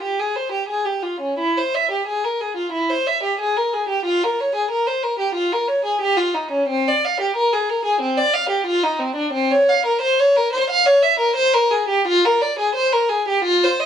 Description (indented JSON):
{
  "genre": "classical, baroque-style suite movement for unaccompanied violin",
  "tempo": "90 BPM",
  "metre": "4/4",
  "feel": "uneven beats, rubato",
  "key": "F minor, C minor from 6.7 s",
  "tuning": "A4 = 443 Hz",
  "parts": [
    { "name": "rich violin", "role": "solo", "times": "0.0-13.9 s", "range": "C4 to F5", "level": "-17 LUFS", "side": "equal", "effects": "none" }
  ],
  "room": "light reverb",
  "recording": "nothing above 10.9 kHz",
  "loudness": "-17 LUFS",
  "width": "side -9 dB against mid",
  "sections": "0.0-13.9 A section",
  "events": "none",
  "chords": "none"
}